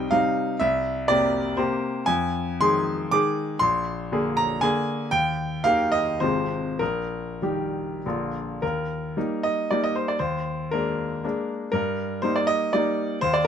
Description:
classical, romantic triple-time dance for piano with dotted rhythms; 93-129 BPM; 3/4; rubato; Eb major; A4 = 439 Hz
bright grand piano; solo; 0.0-13.5 s; Ab1 to D6; -22 LUFS; equal
moderate studio ambience, RT60 0.5 s; -22 LUFS; side -8 dB against mid
0.0-8.6 A section; 8.6-13.5 B section
0.0 Cm; 0.6 C7; 2.1 Fm7; 3.6 Bb7; 5.1 Eb; 6.2 Fm/Ab; 6.8 Eb/Bb; 8.0 Bb; 8.6 Eb; 10.2 Bb7/Eb; 11.7 Eb/G

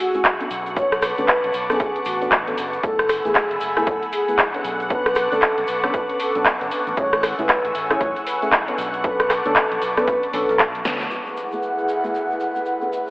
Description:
deep house; 116 BPM; 4/4; swing 61% on 16ths; B dorian; A4 = 440 Hz
mellow horn-like synth lead; melody; 0.0-10.6 s; F#4 to C#5; -24 LUFS; equal; lush chorus, tape echo
airy breathy pad; sustained chords; 0.0-13.1 s; D3 to E6; -25 LUFS; equal; chorus, vintage 12-bit sampler grit, sidechain pumping
deep mellow chord stab; stabs; 0.0-13.1 s; A3 to A4; -29 LUFS; equal; chorus, sidechain pumping, diffuse ambient delay
string machine, violins; texture; 0.0-11.1 s; F#5; -32 LUFS; equal; ensemble chorus
house drum kit; drums; 0.1-11.1 s; handclaps, hi-hat, rim click, snare drum; -21 LUFS; equal; small room reverb
egg shaker; percussion; 0.1-13.1 s; -46 LUFS; equal
electronic kick drum; drums; 0.2-10.7 s; -26 LUFS; equal; small room reverb
fingered electric bass; bass; 0.5-11.1 s; F#1 to D2; -37 LUFS; equal; sidechain pumping
wet lush hall reverb, RT60 1.9 s, digital ambience; dreamy mix soaked in reverb, telephone sound; -18 LUFS; side -23 dB against mid
0.0-11.1 A section; 11.1-13.1 B section
filter sweep on synth stab 0.0-11.1; drum fill 10.9; band accent 10.9; filter sweep on analog synth pad 11.1-13.1
0.0 Amaj7; 0.5 Bm9; 2.8 F#m11; 4.6 Bm9; 7.0 Amaj7; 8.8 Bm9; 11.1 F#m11

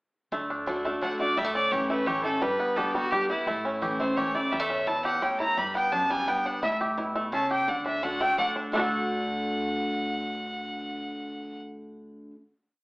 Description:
bluegrass; 171 BPM; 3/4; straight; D major; A4 = 435 Hz
picked steel-string acoustic guitar; accompaniment; 0.3-12.4 s; E2 to G4; -32 LUFS; equal
bluegrass banjo; arpeggios; 0.3-12.3 s; G3 to A4; -29 LUFS; equal
upright bass; bass; 0.3-12.3 s; E1 to D2; -50 LUFS; equal
clear fiddle; melody; 1.0-11.6 s; E4 to B5; -28 LUFS; equal; plate reverb
wet studio reverb, RT60 0.5 s; heard from further back in the room, AM radio sound; -25 LUFS; side -30 dB against mid
0.3-8.7 A section; 8.7-10.8 final chord
0.3 D; 1.4 A; 2.4 G; 3.5 A; 5.6 G; 6.6 A; 7.7 D

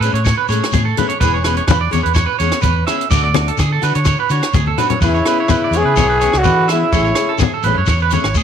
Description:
highlife guitar band; 126 BPM; 4/4; straight; E mixolydian; A4 = 440 Hz
picked steel-string acoustic guitar; accompaniment; 0.0-8.3 s; E3 to G#4; -24 LUFS; left 11 dB
electric guitar at the edge of break-up; arpeggios; 0.0-8.4 s; G#4 to E5; -18 LUFS; right 9 dB; wide subtle chorus, slapback echo
fingered electric bass; bass; 0.0-8.4 s; E1 to E3; -18 LUFS; equal
compact cocktail drum kit; drums; 0.0-8.4 s; hi-hat, kick drum, rim click; -20 LUFS; equal
shekere; percussion; 0.0-8.4 s; -25 LUFS; left 7 dB
congas; percussion; 0.3-8.2 s; -21 LUFS; left 8 dB
growling trumpet; melody; 5.0-7.4 s; E4 to G#4; -16 LUFS; left 1 dB
raspy tenor saxophone; second line; 5.0-7.4 s; C#3 to E3; -25 LUFS; left 10 dB
light reverb, small room ambience; 1960s-style stereo with parts hard left and right; -13 LUFS; side -8 dB against mid
0.0-5.0 A section; 5.0-8.4 B section
drum fill 4.7-5.0
0.0 Amaj7; 1.2 E6; 3.1 D; 5.0 E6; 6.9 Amaj7

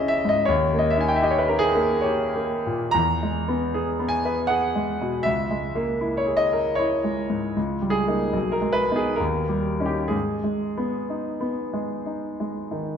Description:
classical, romantic nocturne for solo piano; 60-84 BPM; 3/4; rubato; G# minor; A4 = 440 Hz
clear concert grand piano; solo; 0.0-13.0 s; B1 to A#5; -21 LUFS; equal
wet recital hall reverb, RT60 1.4 s; dark, warm production; -21 LUFS; side -8 dB against mid
0.0-13.0 A section
0.5 D#7; 3.0 E; 5.3 A#m7b5/C#; 7.6 D#7/C#; 8.3 G#m/B; 9.2 D#7; 10.1 G#m

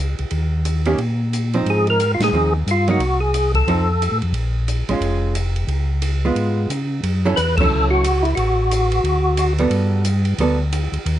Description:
soul jazz organ trio; 179 BPM; 4/4; swing 62% on 8ths; A4 = 440 Hz
mellow tonewheel organ; bass; 0.0-11.2 s; F1 to Db3; -19 LUFS; equal; chorus vibrato, slow rotary speaker
open jazz drum kit; drums; 0.2-11.2 s; crash cymbal, hi-hat, kick drum, ride cymbal, snare drum; -27 LUFS; right 1 dB
archtop guitar, miked and amplified; accompaniment; 0.9-10.6 s; Eb3 to A4; -21 LUFS; right 3 dB
percussive tonewheel organ; melody; 1.7-4.2, 7.4-9.5 s; E4 to B4; -19 LUFS; equal; slow rotary speaker, chorus vibrato
light reverb; dark, warm production, nothing above 10.9 kHz; -16 LUFS; side -12 dB against mid
0.0-7.0 A section; 7.0-11.2 B section
band accent 2.2, 7.5
0.3 Eb5; 1.7 Ab6; 3.0 Ab7b9/C; 3.7 F7; 4.3 Bbm7; 5.7 Db7; 7.0 F#m7; 8.4 F#m/A; 9.0 Gmaj9

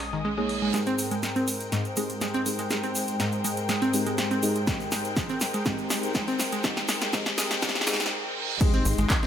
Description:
progressive house; 122 BPM; 4/4; straight; Ab major; A4 = 440 Hz
muted studio string section; sustained chords; 0.0-9.3 s; Ab2 to Eb6; -32 LUFS; left 1 dB; vintage 12-bit sampler grit, sidechain pumping
tight sequencer bass; bass; 0.0-0.7, 8.9-9.1 s; Ab1 to Bb1; -30 LUFS; equal; sidechain pumping
big-room dance drum kit; drums; 0.0-9.3 s; crash cymbal, handclaps, hi-hat, ride cymbal, snare drum; -30 LUFS; equal; low-pass filter on hats, small room ambience, low-pass filter on snare, low-pass filter on cymbals
breakbeat sampler-style drum kit; drums; 0.0-0.7, 8.6-9.3 s; hi-hat, snare drum; -39 LUFS; equal; sidechain pumping on hats, high-pass filter on hats, low-pass filter on hats, small room ambience, high-pass filter on snare, low-pass filter on snare
reverse cymbal, riser and impact; sound effects; 0.1-9.3 s; -36 LUFS; right 1 dB
drifting glass-harmonics texture; texture; 0.1-0.7 s; Eb6; -49 LUFS; right 5 dB
glassy wavetable pluck; arpeggios; 0.1-9.3 s; Ab2 to C4; -30 LUFS; right 1 dB; chorus, cassette tape, sidechain pumping, tape echo
deep mellow chord stab; stabs; 0.4-9.3 s; Ab3 to Db5; -32 LUFS; equal; chorus, phaser, sidechain pumping, tape echo
egg shaker; percussion; 0.7-9.2 s; -37 LUFS; left 1 dB
electronic kick drum; drums; 4.7-9.2 s; -27 LUFS; equal; overdrive, small room ambience
light reverb; high-pass filter; -24 LUFS; side -9 dB against mid
0.7-8.6 A section
reverse cymbal 0.1-0.7, 7.6-8.6; build-up 0.7-8.6; drum fill 0.7-8.1; filter sweep on synth stab 0.7-8.6; filter sweep 0.7-8.6; break 8.1-8.6; impact 8.6-9.3
0.0 Ebsus4/Bb; 0.7 Abmaj7

